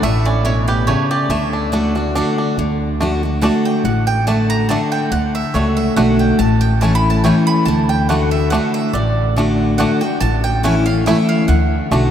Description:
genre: bluegrass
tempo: 141 BPM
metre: 3/4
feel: swing 54% on 8ths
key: D major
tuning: A4 = 441 Hz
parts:
  - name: bluegrass banjo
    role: melody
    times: 0.0-12.0 s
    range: A3 to G4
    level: -24 LUFS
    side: right 3 dB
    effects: none
  - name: picked steel-string acoustic guitar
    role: accompaniment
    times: 0.0-12.1 s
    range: A2 to F#4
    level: -17 LUFS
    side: left 2 dB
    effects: none
  - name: mandolin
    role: stabs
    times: 0.0-12.1 s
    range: B4 to B5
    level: -22 LUFS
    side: right 3 dB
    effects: none
  - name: upright bass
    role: bass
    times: 0.0-12.1 s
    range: A1 to D2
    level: -18 LUFS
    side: equal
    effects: none
room: wet cathedral reverb, RT60 5.1 s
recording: in a vast, echoing space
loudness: -14 LUFS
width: side -9 dB against mid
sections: 0.0-2.6 A section; 2.6-12.1 A section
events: mandolin solo 0.0-12.1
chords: 0.0 A; 1.3 D; 6.4 A; 7.7 D; 10.2 A; 11.5 D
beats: | 0.03 0.46 0.88 | 1.30 1.73 2.15 | 2.57 3.00 3.42 | 3.85 4.27 4.69 | 5.12 5.54 5.97 | 6.39 6.82 7.24 | 7.67 8.09 8.52 | 8.94 9.37 9.79 | 10.21 10.64 11.06 | 11.49 11.91

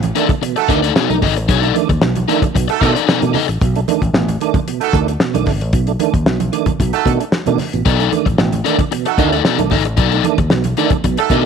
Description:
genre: funk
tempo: 113 BPM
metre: 4/4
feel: straight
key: B mixolydian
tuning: A4 = 441 Hz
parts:
  - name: tonewheel organ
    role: stabs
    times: 0.0-11.4 s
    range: B2 to D4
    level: -20 LUFS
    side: right 13 dB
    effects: overdrive, chorus vibrato, slow rotary speaker
  - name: fingered electric bass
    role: bass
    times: 0.0-11.4 s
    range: G#1 to B2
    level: -18 LUFS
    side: left 1 dB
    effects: tube saturation
  - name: damped 70s drum kit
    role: drums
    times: 0.0-11.4 s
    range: hi-hat, kick drum, snare drum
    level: -18 LUFS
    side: left 1 dB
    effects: none
  - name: congas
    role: percussion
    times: 0.0-11.4 s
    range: none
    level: -25 LUFS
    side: right 10 dB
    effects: none
  - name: crunchy overdriven guitar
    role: accompaniment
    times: 0.2-3.5, 7.9-11.4 s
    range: D#4 to D#5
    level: -18 LUFS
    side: left 15 dB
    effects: none
  - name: clear horn section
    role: second line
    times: 0.6-11.4 s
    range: A3 to A4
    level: -19 LUFS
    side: right 14 dB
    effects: none
room: light reverb, small room ambience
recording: 1960s-style stereo with parts hard left and right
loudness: -13 LUFS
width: side -6 dB against mid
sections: 0.0-11.5 A section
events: none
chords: 0.0 B7#9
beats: 0.42 0.95 | 1.49 2.02 2.55 3.08 | 3.61 4.14 4.67 5.20 | 5.73 6.26 6.79 7.32 | 7.85 8.38 8.91 9.45 | 9.98 10.51 11.04

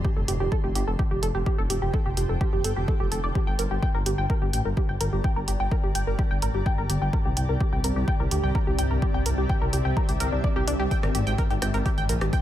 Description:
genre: melodic techno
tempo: 127 BPM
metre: 4/4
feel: straight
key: G dorian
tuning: A4 = 437 Hz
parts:
  - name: tight sequenced synth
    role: arpeggios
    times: 0.0-12.4 s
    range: D4 to G5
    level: -30 LUFS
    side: equal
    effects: chorus, sidechain pumping, analog delay
  - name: swarming drone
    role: drone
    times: 0.0-12.4 s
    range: G2 to D3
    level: -36 LUFS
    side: equal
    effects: none
  - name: electronic kick drum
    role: drums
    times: 0.0-12.4 s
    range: none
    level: -26 LUFS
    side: equal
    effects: overdrive
  - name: granular cloud pad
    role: texture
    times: 0.0-12.4 s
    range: C4 to C6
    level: -35 LUFS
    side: equal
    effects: built-in reverb, analog chorus, sidechain pumping
  - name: dark detuned saw bass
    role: bass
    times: 0.2-12.3 s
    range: F1 to D2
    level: -27 LUFS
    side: equal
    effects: sidechain pumping
  - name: punchy analog drum machine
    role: drums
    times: 0.3-12.4 s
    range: hi-hat, rim click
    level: -32 LUFS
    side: right 2 dB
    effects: none
room: light reverb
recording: none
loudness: -22 LUFS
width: side -12 dB against mid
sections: 0.0-12.4 A section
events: fade-in on ambient pad 0.0-12.4; filter sweep on synth arpeggio sound 0.0-12.4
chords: 0.0 F; 3.4 Gm; 7.1 C; 10.9 Abadd9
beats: 0.05 0.52 0.99 | 1.46 1.94 2.41 2.88 | 3.35 3.83 4.30 4.77 | 5.24 5.71 6.19 6.66 | 7.13 7.61 8.08 8.55 | 9.02 9.49 9.97 10.44 | 10.91 11.38 11.86 12.33

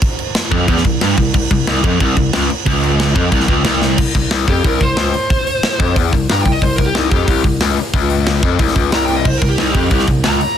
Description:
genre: heavy metal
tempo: 182 BPM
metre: 4/4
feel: straight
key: unclear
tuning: A4 = 444 Hz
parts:
  - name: tight metal drum kit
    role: drums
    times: 0.0-10.5 s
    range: crash cymbal, hi-hat, kick drum, snare drum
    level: -16 LUFS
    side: equal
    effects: none
  - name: distorted electric guitar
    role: riff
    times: 0.5-4.0, 9.2-10.4 s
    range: C2 to G2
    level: -19 LUFS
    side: right 10 dB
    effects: overdrive
  - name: distorted electric guitar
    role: riff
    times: 0.5-4.0 s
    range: C2 to G2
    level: -21 LUFS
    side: right 1 dB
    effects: distortion
  - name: tight distorted guitar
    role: riff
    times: 0.5-10.4 s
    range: C2 to G2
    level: -18 LUFS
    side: left 10 dB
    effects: distortion
  - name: breathy bass clarinet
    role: bass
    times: 0.5-10.4 s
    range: C2 to G2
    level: -19 LUFS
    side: right 1 dB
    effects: none
  - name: high-gain lead guitar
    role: melody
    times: 4.5-10.6 s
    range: Eb4 to Bb5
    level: -19 LUFS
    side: equal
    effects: distortion
room: light reverb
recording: dense, heavily limited modern master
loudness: -12 LUFS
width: side -9 dB against mid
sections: 0.0-4.0 A section; 4.0-10.6 B section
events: drum fill 3.8; lead electric guitar solo 4.0-10.6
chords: 0.0 C; 4.0 N.C.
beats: | 0.02 0.35 0.68 1.01 | 1.34 1.67 2.00 2.33 | 2.66 2.99 3.32 3.65 | 3.98 4.31 4.64 4.97 | 5.30 5.63 5.96 6.29 | 6.62 6.95 7.28 7.61 | 7.94 8.27 8.60 8.93 | 9.26 9.59 9.92 10.25 | 10.58

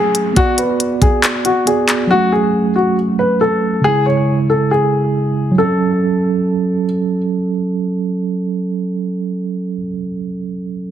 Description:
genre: hip hop, trap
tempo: 138 BPM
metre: 4/4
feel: half-time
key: F# minor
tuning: A4 = 439 Hz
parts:
  - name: dark baby grand piano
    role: melody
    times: 0.0-6.8 s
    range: F#4 to C#5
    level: -16 LUFS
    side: left 2 dB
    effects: tape echo
  - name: mellow tine electric piano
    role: accompaniment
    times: 0.0-10.9 s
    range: C#3 to D5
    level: -17 LUFS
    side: right 3 dB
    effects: medium stereo tremolo
  - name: downlifter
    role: sound effects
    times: 0.0-2.1 s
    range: none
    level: -33 LUFS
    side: left 1 dB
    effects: none
  - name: trap drum kit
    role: drums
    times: 0.1-2.0 s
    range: handclaps, hi-hat, kick drum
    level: -15 LUFS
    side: left 1 dB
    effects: none
room: light reverb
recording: heavily compressed radio sound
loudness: -14 LUFS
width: side -10 dB against mid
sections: 0.0-5.6 A section; 5.6-9.1 B section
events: none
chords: 0.4 Bm; 2.1 F#m; 3.8 C#m; 5.6 F#m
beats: | 0.36 0.80 1.23 1.67 | 2.10 2.54 2.97 3.41 | 3.84 4.28 4.71 5.15 | 5.58 6.02 6.45 6.89 | 7.32 7.76 8.19 8.63

